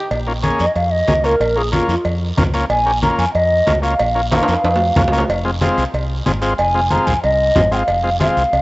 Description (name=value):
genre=latin, cumbia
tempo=185 BPM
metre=4/4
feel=straight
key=unclear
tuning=A4 = 440 Hz
part: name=deep dub fingered electric bass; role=bass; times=0.1-8.6 s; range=F1 to F2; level=-21 LUFS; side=equal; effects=none
part: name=congas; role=percussion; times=0.1-8.6 s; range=none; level=-21 LUFS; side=equal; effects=none
part: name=cowbell and timbales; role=percussion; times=0.1-8.6 s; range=none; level=-23 LUFS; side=right 2 dB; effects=none
part: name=guiro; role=percussion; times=0.1-8.6 s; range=none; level=-31 LUFS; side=right 2 dB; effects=none
part: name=combo organ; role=accompaniment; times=0.3-8.4 s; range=Ab3 to Ab4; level=-21 LUFS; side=left 1 dB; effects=cassette tape
part: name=mellow bansuri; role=melody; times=0.6-8.6 s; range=F4 to Bb5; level=-17 LUFS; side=equal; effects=cassette tape
room=light reverb, small room ambience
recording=home recording on cassette, nothing above 7.9 kHz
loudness=-14 LUFS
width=side -21 dB against mid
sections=0.1-8.6 A section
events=bansuri solo 0.1-8.6; drum fill 4.3-5.3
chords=0.1 Bbm; 5.3 Fm